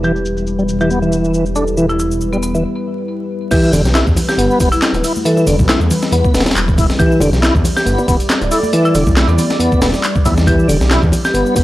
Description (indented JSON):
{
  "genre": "breakbeat, breaks",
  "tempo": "138 BPM",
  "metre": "4/4",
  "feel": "swing 55% on 16ths",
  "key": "E minor",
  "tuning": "A4 = 440 Hz",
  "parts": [
    { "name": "marimba with hard mallets", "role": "melody", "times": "0.0-11.3 s", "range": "B3 to A4", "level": "-21 LUFS", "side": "equal", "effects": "small speaker sound, tape echo" },
    { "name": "deep dark ambient pad", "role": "sustained chords", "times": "0.0-11.6 s", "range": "G3 to D5", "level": "-22 LUFS", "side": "left 1 dB", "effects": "chorus, built-in reverb, vintage 12-bit sampler grit, sidechain pumping" },
    { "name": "tonewheel organ", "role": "riff", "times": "0.0-11.6 s", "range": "D3 to E4", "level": "-16 LUFS", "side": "equal", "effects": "overdrive, chorus vibrato, slow rotary speaker, low-pass filter" },
    { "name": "detuned saw bass", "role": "bass", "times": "0.0-11.6 s", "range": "D1 to E2", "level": "-17 LUFS", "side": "equal", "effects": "none" },
    { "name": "house drum kit", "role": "drums", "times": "0.0-11.6 s", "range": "handclaps, ride cymbal, shaker", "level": "-24 LUFS", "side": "equal", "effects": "low-pass filter on perc, small room ambience, low-pass filter on cymbals, low-pass filter on snare" },
    { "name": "breakbeat sampler-style drum kit", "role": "drums", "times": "3.5-11.6 s", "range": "crash cymbal, hi-hat, kick drum, snare drum", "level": "-16 LUFS", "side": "equal", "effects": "small room ambience" },
    { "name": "congas and bongos", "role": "percussion", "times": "3.7-11.6 s", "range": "none", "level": "-23 LUFS", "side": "left 1 dB", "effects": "none" }
  ],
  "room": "digital ambience",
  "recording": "dry, gritty hardware recording, vinyl crackle",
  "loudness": "-12 LUFS",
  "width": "side -16 dB against mid",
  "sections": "0.0-3.5 A section; 3.5-11.6 B section",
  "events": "break 2.6-3.5; drop 3.5-11.6",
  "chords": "0.0 Em"
}